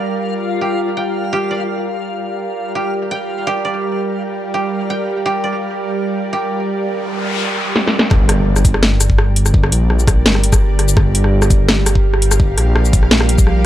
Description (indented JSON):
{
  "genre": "half-time drum and bass",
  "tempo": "168 BPM",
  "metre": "4/4",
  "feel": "half-time",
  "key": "G minor",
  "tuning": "A4 = 441 Hz",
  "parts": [
    { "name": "bowed-like drone", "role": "sustained chords", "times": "0.0-13.7 s", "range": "G3 to F5", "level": "-21 LUFS", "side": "right 2 dB", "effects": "built-in reverb, sidechain pumping" },
    { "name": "koto", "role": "arpeggios", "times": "0.0-8.4 s", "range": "G4 to G5", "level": "-23 LUFS", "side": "right 2 dB", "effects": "vintage 12-bit sampler grit, low-pass filter, analog delay" },
    { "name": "backwards swelling texture", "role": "texture", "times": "0.0-6.7 s", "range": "F4 to F5", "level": "-26 LUFS", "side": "left 4 dB", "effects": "built-in reverb" },
    { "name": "noise sweep and impact", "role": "sound effects", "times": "7.0-9.5 s", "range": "none", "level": "-23 LUFS", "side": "equal", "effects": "none" },
    { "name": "drum and bass drum kit", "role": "drums", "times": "7.8-13.5 s", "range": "hi-hat, rim click, shaker, snare drum", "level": "-16 LUFS", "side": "left 1 dB", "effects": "low-pass filter on snare, low-pass filter on hats, low-pass filter on perc, low-pass filter on cymbals, low-pass filter on room" },
    { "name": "dark detuned saw bass", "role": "bass", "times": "8.1-13.7 s", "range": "G1 to Bb1", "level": "-14 LUFS", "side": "equal", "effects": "none" },
    { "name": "electronic kick drum", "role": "drums", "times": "8.1-13.5 s", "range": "none", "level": "-13 LUFS", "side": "equal", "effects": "none" }
  ],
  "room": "digital ambience",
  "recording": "dry, gritty hardware recording",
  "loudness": "-13 LUFS",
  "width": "side -13 dB against mid",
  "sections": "0.0-8.1 A section; 8.1-13.7 B section",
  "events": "filter sweep on koto 0.0-8.1; noise sweep 7.0-8.1; drum fill 7.8-8.1; drop 8.1-13.7; impact 8.1-9.5",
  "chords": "0.0 Gm",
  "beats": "0.26 0.61 | 0.97 1.33 1.68 2.04 | 2.40 2.75 3.11 3.47 | 3.83 4.18 4.54 4.90 | 5.25 5.61 5.97 6.33 | 6.68 7.04 7.40 7.75 | 8.11 8.47 8.83 9.18 | 9.54 9.90 10.26 10.61 | 10.97 11.33 11.68 12.04 | 12.40 12.76 13.11 13.47"
}